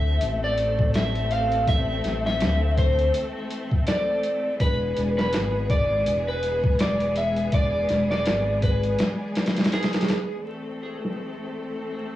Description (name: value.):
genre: trip hop.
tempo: 82 BPM.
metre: 4/4.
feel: swing 57% on 16ths.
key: unclear.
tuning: A4 = 441 Hz.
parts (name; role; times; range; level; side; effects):
electric slide guitar; melody; 0.0-10.4 s; G#4 to F5; -26 LUFS; equal; tape echo.
bright studio string section; sustained chords; 0.0-12.2 s; E3 to A4; -30 LUFS; equal; cassette tape.
round analog bass; bass; 0.0-9.0 s; E1 to D2; -26 LUFS; equal; none.
boom bap sampler-style drum kit; drums; 0.2-12.1 s; hi-hat, kick drum, snare drum; -24 LUFS; equal; low-pass filter on hats, studio reverb, cassette tape, low-pass filter on snare, low-pass filter on kick.
room: light reverb, digital ambience.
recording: home recording on cassette, vinyl crackle, small room ambience.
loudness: -21 LUFS.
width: side -14 dB against mid.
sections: 0.0-10.5 A section; 10.5-12.2 B section.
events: none.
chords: 0.0 Am; 4.6 E; 10.5 Am.